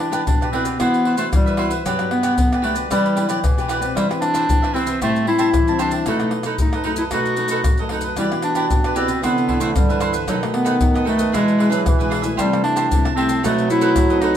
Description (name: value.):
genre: samba and choro.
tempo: 114 BPM.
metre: 4/4.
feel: straight.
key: E minor.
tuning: A4 = 441 Hz.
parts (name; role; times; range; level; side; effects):
clear clarinet; melody; 0.0-14.4 s; E3 to F#4; -20 LUFS; equal; none.
cavaquinho; accompaniment; 0.0-14.4 s; D4 to A5; -24 LUFS; right 4 dB; none.
nylon-string guitar; accompaniment; 0.0-14.4 s; F#2 to G4; -26 LUFS; left 5 dB; none.
pandeiro, tamborim, maracas and surdo; percussion; 0.0-14.4 s; none; -22 LUFS; left 1 dB; none.
breathy trombone; second line; 8.2-14.4 s; B2 to F#3; -25 LUFS; right 6 dB; none.
room: wet studio reverb, RT60 0.8 s.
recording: band playing live in one room.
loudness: -16 LUFS.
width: side -10 dB against mid.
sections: 0.0-14.4 A section.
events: none.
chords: 0.0 Em7; 0.8 Cmaj9#11/E; 1.8 Gmaj7; 2.9 Em7; 4.0 Cmaj7/E; 5.0 Am7; 6.1 B7; 8.2 Em7; 9.2 Cmaj9; 10.3 B7; 11.3 E7/B; 12.4 Am7/C; 13.4 B7b9.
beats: 0.26 0.79 1.32 | 1.85 2.37 2.90 3.43 | 3.96 4.48 5.01 5.54 | 6.06 6.59 7.12 7.64 | 8.17 8.70 9.22 9.75 | 10.28 10.80 11.33 11.86 | 12.38 12.91 13.44 13.96.